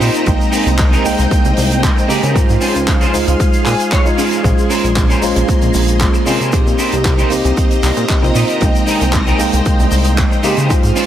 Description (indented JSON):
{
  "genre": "nu-disco, nu disco",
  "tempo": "115 BPM",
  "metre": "4/4",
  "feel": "straight",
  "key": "unclear",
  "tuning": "A4 = 439 Hz",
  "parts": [
    { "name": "tine electric piano", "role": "accompaniment", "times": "0.0-11.1 s", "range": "Ab3 to G5", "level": "-18 LUFS", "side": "right 1 dB", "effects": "medium stereo tremolo, diffuse ambient delay" },
    { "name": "string machine, full ensemble", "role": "sustained chords", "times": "0.0-11.1 s", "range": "Bb3 to C6", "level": "-22 LUFS", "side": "equal", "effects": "phaser, ensemble chorus, sidechain pumping" },
    { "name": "electric guitar at the edge of break-up", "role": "riff", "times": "0.0-11.1 s", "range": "Db4 to Ab5", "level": "-21 LUFS", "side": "right 1 dB", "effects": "analog chorus, diffuse ambient delay" },
    { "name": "chorused synth bass", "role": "bass", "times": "0.0-10.9 s", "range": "Bb1 to Db3", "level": "-17 LUFS", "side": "equal", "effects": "none" },
    { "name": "tight funk drum kit", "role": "drums", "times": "0.0-11.1 s", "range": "handclaps, hi-hat, shaker", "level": "-22 LUFS", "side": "equal", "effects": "none" },
    { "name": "electronic kick drum", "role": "drums", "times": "0.3-10.8 s", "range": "none", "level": "-15 LUFS", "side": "equal", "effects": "overdrive" }
  ],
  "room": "light reverb, small room ambience",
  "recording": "none",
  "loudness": "-11 LUFS",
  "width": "side -11 dB against mid",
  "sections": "0.0-11.1 A section",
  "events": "clean electric guitar fill 3.4-4.4",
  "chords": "0.3 Abmaj9/C; 2.4 Dbmaj7; 4.4 Bbm9; 6.5 Cm7; 8.6 Abmaj9/C",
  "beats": "| 0.27 0.79 1.31 1.83 | 2.36 2.88 3.40 3.92 | 4.44 4.96 5.49 6.01 | 6.53 7.05 7.57 8.10 | 8.62 9.14 9.66 10.18 | 10.70"
}